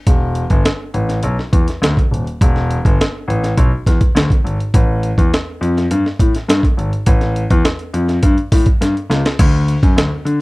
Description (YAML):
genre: funk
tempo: 103 BPM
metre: 4/4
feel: straight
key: unclear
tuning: A4 = 439 Hz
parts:
  - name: warm concert grand piano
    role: bass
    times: 0.1-10.4 s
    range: Eb1 to D3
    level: -16 LUFS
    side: left 1 dB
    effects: none
  - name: breakbeat sampler-style drum kit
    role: drums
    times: 0.1-10.4 s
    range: crash cymbal, hi-hat, kick drum, snare drum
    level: -14 LUFS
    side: equal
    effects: none
room: little or no reverb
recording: dry, close 1970s-style studio recording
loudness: -13 LUFS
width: side -22 dB against mid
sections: 0.1-9.4 A section; 9.4-10.4 B section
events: drum fill 8.8-9.4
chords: none